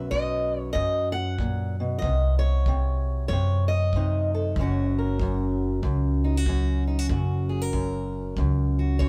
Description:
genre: acoustic country blues, solo or duo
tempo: 95 BPM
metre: 4/4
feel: swing 63% on 8ths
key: F# major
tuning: A4 = 440 Hz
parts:
  - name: fingerpicked steel-string acoustic guitar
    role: melody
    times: 0.0-9.1 s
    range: F#2 to F#5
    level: -30 LUFS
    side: equal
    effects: none
  - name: upright bass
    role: bass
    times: 0.0-9.1 s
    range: F#1 to F#2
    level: -27 LUFS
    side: equal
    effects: none
  - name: kick drum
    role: drums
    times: 0.1-9.1 s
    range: none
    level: -33 LUFS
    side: equal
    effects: none
room: light reverb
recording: band playing live in one room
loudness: -25 LUFS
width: mono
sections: 0.0-9.1 A section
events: none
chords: 0.0 B; 2.0 Cdim; 4.6 F#

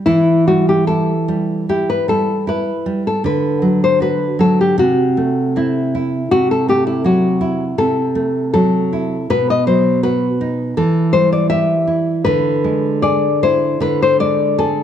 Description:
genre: romantic duo for nylon-string guitar and classical guitar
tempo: 72-84 BPM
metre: 4/4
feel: rubato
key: E minor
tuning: A4 = 440 Hz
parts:
  - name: nylon-string guitar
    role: accompaniment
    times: 0.0-14.8 s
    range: B2 to G#4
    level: -16 LUFS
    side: right 2 dB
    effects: none
  - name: nylon-string guitar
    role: melody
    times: 0.1-14.8 s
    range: E4 to E5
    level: -16 LUFS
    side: left 4 dB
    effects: none
room: moderate recital hall reverb, RT60 1.6 s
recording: dark, warm production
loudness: -13 LUFS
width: side -9 dB against mid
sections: 0.1-14.8 A section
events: none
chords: 0.1 Em; 3.2 D6; 4.8 Am/C; 6.3 F#m7b5/C; 9.3 B; 10.8 Em; 12.3 E7/D

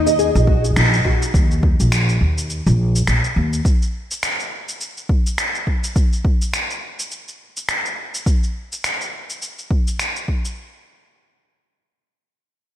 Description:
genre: organic downtempo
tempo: 104 BPM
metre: 4/4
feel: swing 58% on 16ths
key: Eb minor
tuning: A4 = 440 Hz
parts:
  - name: breathy flute-like synth lead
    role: melody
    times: 0.0-0.8 s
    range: Eb5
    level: -28 LUFS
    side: right 1 dB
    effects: wide subtle chorus, diffuse ambient delay
  - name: nylon-string guitar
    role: arpeggios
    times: 0.0-1.2 s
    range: Eb4 to Eb5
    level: -21 LUFS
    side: left 1 dB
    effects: ensemble chorus, diffuse ambient delay
  - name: upright bass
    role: bass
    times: 0.0-3.6 s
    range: Bb1 to Eb2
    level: -17 LUFS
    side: equal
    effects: tube saturation, sidechain pumping
  - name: electronic shaker and finger snaps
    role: drums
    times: 0.1-10.5 s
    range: none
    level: -23 LUFS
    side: equal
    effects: none
  - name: electronic kick drum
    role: drums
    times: 0.5-10.4 s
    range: none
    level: -17 LUFS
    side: equal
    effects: overdrive
room: moderate lush hall reverb, RT60 2.2 s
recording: dreamy mix soaked in reverb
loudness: -17 LUFS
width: side -11 dB against mid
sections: 0.0-1.3 A section; 1.3-10.6 B section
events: band accent 0.8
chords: 0.0 Ebm; 1.3 Eb5

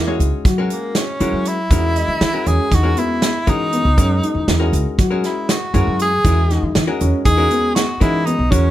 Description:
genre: progressive instrumental, band music in an uneven meter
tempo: 238 BPM (eighths)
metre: 9/8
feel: straight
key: E lydian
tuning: A4 = 440 Hz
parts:
  - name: breathy tenor saxophone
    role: melody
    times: 0.0-8.7 s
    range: A#3 to G#4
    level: -20 LUFS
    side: equal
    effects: plate reverb
  - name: dark concert grand piano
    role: arpeggios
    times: 0.0-8.7 s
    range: B3 to D#5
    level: -23 LUFS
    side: equal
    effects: digital delay
  - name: upright bass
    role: bass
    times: 0.0-8.7 s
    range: B1 to F#3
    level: -18 LUFS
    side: equal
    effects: none
  - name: archtop guitar, miked and amplified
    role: accompaniment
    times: 0.1-8.7 s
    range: G#3 to C#5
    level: -24 LUFS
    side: left 4 dB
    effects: none
  - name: modern studio drum kit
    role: drums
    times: 0.2-8.6 s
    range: hi-hat, kick drum, snare drum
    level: -18 LUFS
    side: right 1 dB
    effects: none
  - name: egg shaker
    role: percussion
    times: 0.2-8.7 s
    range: none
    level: -34 LUFS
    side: left 8 dB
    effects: none
room: light reverb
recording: none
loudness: -14 LUFS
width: side -13 dB against mid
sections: 0.0-8.7 A section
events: tenor saxophone solo 0.0-8.7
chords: 0.0 F#7; 1.7 Emaj7; 4.0 F#7; 6.3 E69

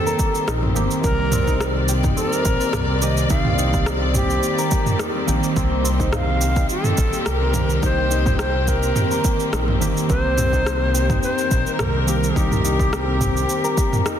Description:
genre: organic downtempo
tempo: 106 BPM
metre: 4/4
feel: swing 54% on 16ths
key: C minor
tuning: A4 = 440 Hz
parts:
  - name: Native American-style cedar flute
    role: melody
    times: 0.0-14.2 s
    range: G4 to F5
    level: -25 LUFS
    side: equal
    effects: ping-pong delay
  - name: muted felt-like synth keys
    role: accompaniment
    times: 0.0-14.2 s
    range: Eb3 to G4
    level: -28 LUFS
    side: right 3 dB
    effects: chorus, sidechain pumping, ping-pong delay
  - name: rich studio string section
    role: sustained chords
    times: 0.0-14.2 s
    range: Eb3 to D5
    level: -28 LUFS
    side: left 2 dB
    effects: sidechain pumping
  - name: concert harp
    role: arpeggios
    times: 0.0-14.2 s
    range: Bb3 to Bb4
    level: -26 LUFS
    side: left 2 dB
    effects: ping-pong delay
  - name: deep house drum kit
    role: drums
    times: 0.1-14.2 s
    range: cabasa, rim click, toms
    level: -25 LUFS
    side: right 1 dB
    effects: overdrive
  - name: electronic kick drum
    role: drums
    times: 0.2-13.9 s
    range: none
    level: -22 LUFS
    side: equal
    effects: overdrive
  - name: smooth gliding synth bass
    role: bass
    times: 0.5-13.5 s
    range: G1 to C2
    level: -22 LUFS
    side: equal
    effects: sidechain pumping
room: light reverb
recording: dense, heavily limited modern master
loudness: -17 LUFS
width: side -9 dB against mid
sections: 0.0-14.2 A section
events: none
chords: 0.0 Cm7

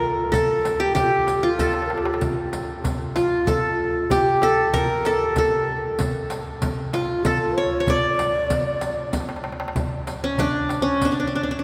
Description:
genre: Arabic maqam ensemble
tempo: 96 BPM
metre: 3/4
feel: straight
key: unclear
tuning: A4 = 440 Hz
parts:
  - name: qanun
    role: melody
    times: 0.0-11.6 s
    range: C#4 to D5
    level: -24 LUFS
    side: equal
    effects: none
  - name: breathy mellow ney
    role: second line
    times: 0.0-9.1 s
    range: F4 to D5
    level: -30 LUFS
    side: equal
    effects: none
  - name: darbuka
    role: percussion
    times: 0.3-11.2 s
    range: none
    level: -32 LUFS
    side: equal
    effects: none
  - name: frame drum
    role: percussion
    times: 0.3-11.2 s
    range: none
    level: -33 LUFS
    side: equal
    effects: none
  - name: riq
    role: percussion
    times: 0.3-11.2 s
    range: none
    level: -37 LUFS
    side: equal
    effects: none
room: wet cathedral reverb, RT60 5.5 s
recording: recorded in a church or concert hall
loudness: -22 LUFS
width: mono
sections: 0.0-9.8 A section; 9.8-11.6 B section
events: drum fill 1.6-2.2, 9.1-9.8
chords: none

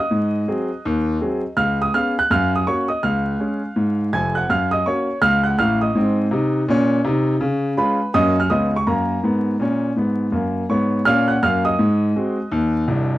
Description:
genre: jazz, stride piano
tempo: 164 BPM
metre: 4/4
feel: swing 60% on 8ths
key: F# major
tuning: A4 = 442 Hz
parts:
  - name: clear concert grand piano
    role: solo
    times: 0.0-13.2 s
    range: B#0 to G#6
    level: -17 LUFS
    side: equal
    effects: none
room: light reverb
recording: dry, close 1970s-style studio recording, vinyl crackle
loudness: -17 LUFS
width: side -15 dB against mid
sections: 0.0-10.3 A section; 10.3-13.2 A section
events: none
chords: 0.1 G#7; 1.6 C#7; 2.3 F#; 3.0 C#; 4.5 F#; 6.0 G#; 7.4 C#7; 8.1 F#; 8.5 C#7; 8.9 F#; 11.8 G#7

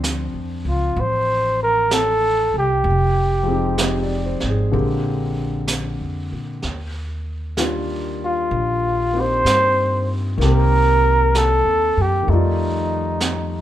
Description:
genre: jazz ballad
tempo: 64 BPM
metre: 4/4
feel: swing 67% on 8ths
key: unclear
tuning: A4 = 440 Hz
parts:
  - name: warm concert grand piano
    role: accompaniment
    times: 0.0-13.6 s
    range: D3 to Eb5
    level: -25 LUFS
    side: left 2 dB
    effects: none
  - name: upright bass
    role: bass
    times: 0.0-13.6 s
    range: F1 to Bb2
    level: -22 LUFS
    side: equal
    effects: none
  - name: jazz brush drum kit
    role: drums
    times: 0.0-13.6 s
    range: brushed snare drum, hi-hat, snare drum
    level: -27 LUFS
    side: right 4 dB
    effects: none
  - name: breathy flugelhorn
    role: melody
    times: 0.7-13.6 s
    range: Eb4 to C5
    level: -18 LUFS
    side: equal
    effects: none
room: light reverb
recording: minimal, uncompressed stereo recording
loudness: -17 LUFS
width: side -12 dB against mid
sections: 0.0-13.6 A section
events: none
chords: 0.0 Dm7; 2.9 Fm9; 4.7 Bb13; 6.6 Ebmaj9; 10.4 Cm7; 12.3 F13

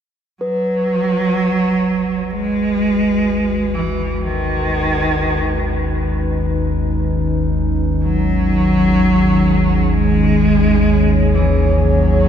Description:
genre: dark ambient drone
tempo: free time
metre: none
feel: none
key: G# minor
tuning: A4 = 440 Hz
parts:
  - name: warm cello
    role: melody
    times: 0.4-12.3 s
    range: D#3 to G#3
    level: -17 LUFS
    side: right 1 dB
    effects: diffuse ambient delay
  - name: dark analog pad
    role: sustained chords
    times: 0.4-12.3 s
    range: G#3 to C#5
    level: -23 LUFS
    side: equal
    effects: chorus
  - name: deep rumbling drone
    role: drone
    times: 1.7-12.3 s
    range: G#1 to D#2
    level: -18 LUFS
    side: left 1 dB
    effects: built-in reverb, lush chorus
  - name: bronze singing bowl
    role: texture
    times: 0.4-12.3 s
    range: B4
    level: -26 LUFS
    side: equal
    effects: none
room: wet plate reverb, RT60 2.8 s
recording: dreamy mix soaked in reverb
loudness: -14 LUFS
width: side -8 dB against mid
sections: 0.4-12.3 A section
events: fade-in on analog synth pad 0.4-12.3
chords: 0.4 G#m7

